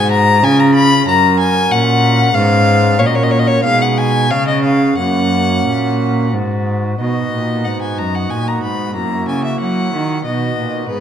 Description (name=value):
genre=classical, baroque-style sonata movement with continuo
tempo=92 BPM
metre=3/4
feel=straight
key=F# major, B major from 7.0 s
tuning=A4 = 438 Hz
part: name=rich violin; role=melody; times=0.0-11.0 s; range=B4 to B5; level=-16 LUFS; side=left 3 dB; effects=none
part: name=pipe organ, foundations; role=accompaniment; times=0.0-11.0 s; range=F#2 to A#4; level=-18 LUFS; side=right 2 dB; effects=none
part: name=clear cello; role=bass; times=0.0-11.0 s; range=F#2 to F#3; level=-16 LUFS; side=equal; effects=none
room=wet recital hall reverb, RT60 1.4 s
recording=none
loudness=-12 LUFS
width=side -9 dB against mid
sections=0.0-7.0 A section; 7.0-11.0 A section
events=none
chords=0.4 C#7; 1.1 F#; 2.4 C#7/G#; 3.0 F#/A#; 3.6 G#m/B; 4.3 C#7; 5.0 F#; 7.0 B; 9.0 F#7; 10.2 B